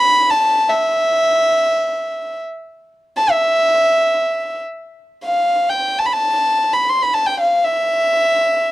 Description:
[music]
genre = Arabic maqam ensemble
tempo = free time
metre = none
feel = none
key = E maqam kurd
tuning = A4 = 440 Hz
[part]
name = warm violin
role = solo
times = 0.0-8.7 s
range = E5 to C6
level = -14 LUFS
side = equal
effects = none
[sound]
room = studio reverb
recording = dry, close 1970s-style studio recording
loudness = -14 LUFS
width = side -16 dB against mid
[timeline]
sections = 0.0-4.9 A section; 4.9-8.7 A section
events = none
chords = none

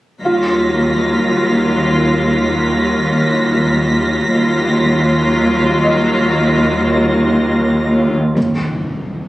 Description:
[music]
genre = cinematic, suspense film score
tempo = 59 BPM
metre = 4/4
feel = straight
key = Eb minor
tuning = A4 = 440 Hz
[part]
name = clear studio viola section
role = accompaniment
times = 0.2-8.1 s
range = Gb3 to F4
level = -18 LUFS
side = left 1 dB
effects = none
[part]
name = rich studio cello section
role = bass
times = 0.2-9.2 s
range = Eb2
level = -16 LUFS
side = equal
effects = none
[part]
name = rich studio double bass section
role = bass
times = 0.2-9.2 s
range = Eb2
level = -20 LUFS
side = right 1 dB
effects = none
[part]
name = rich studio violin section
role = texture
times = 0.2-7.8 s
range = Bb6 to Cb7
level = -22 LUFS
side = equal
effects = none
[part]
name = felt-muted upright piano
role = texture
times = 0.3-8.4 s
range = F4 to F5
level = -23 LUFS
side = equal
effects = none
[part]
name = impact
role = sound effects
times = 8.4-9.3 s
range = none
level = -22 LUFS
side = equal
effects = none
[sound]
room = moderate stone room reverb, RT60 1.4 s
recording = recorded on a phone in the room, club reverb, compression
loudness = -12 LUFS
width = side -16 dB against mid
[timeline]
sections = 0.2-8.4 A section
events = impact 8.4-9.3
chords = 0.2 Ebmadd9; 8.4 N.C.

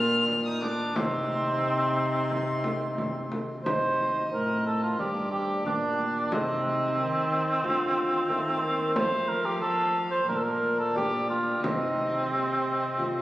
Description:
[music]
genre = classical, renaissance-style consort dance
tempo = 90 BPM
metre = 4/4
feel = straight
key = C dorian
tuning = A4 = 442 Hz
[part]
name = warm violin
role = melody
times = 0.0-13.2 s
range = D5 to F6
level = -35 LUFS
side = left 2 dB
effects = none
[part]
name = warm cor anglais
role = second line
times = 0.0-13.2 s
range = C4 to C5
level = -27 LUFS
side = right 1 dB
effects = none
[part]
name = mellow bassoon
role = accompaniment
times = 0.0-13.2 s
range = A3 to G4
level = -33 LUFS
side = equal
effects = none
[part]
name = dark cello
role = bass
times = 0.0-13.2 s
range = G2 to F3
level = -32 LUFS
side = equal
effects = none
[part]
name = frame drum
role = percussion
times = 0.3-13.2 s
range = none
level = -36 LUFS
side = left 1 dB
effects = none
[sound]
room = wet church reverb, RT60 3.6 s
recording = recorded on a phone in the room, club reverb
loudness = -25 LUFS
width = side -16 dB against mid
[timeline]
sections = 0.0-3.7 A section; 3.7-13.2 B section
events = none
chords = 0.0 Bb; 1.0 Cm; 5.0 Gm; 6.3 Cm; 7.6 Dm; 9.0 F; 10.3 Bb; 11.6 Cm

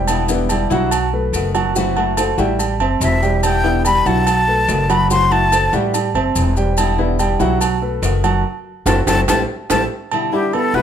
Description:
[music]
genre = latin, Cuban son and guajira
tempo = 144 BPM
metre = 4/4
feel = straight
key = E minor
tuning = A4 = 441 Hz
[part]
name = flamenco guitar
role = accompaniment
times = 0.0-10.8 s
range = B2 to F#4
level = -23 LUFS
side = left 8 dB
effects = none
[part]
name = dark baby grand piano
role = arpeggios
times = 0.0-10.8 s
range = F#3 to F#6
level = -20 LUFS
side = right 4 dB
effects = none
[part]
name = upright bass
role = bass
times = 0.0-10.8 s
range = E1 to B1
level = -20 LUFS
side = left 1 dB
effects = none
[part]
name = agogo bells and timbales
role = percussion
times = 0.1-10.7 s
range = none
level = -22 LUFS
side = right 8 dB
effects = none
[part]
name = maracas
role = percussion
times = 0.1-9.8 s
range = none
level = -27 LUFS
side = left 5 dB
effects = none
[part]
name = breathy jazz flute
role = melody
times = 3.0-5.7, 8.9-10.8 s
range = G4 to C6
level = -18 LUFS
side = left 2 dB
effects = none
[sound]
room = light reverb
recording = none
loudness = -14 LUFS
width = side -9 dB against mid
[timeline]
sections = 0.0-10.1 A section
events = band accent 8.4-10.1; drum fill 9.9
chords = 0.1 Em7; 0.9 B7; 1.8 F#m7b5; 2.6 Am7; 3.4 Em7; 4.3 B7; 5.1 F#m7b5; 5.9 Am7; 6.8 Em7; 7.6 B7; 8.4 F#m7b5; 9.3 Am7; 10.1 Em7

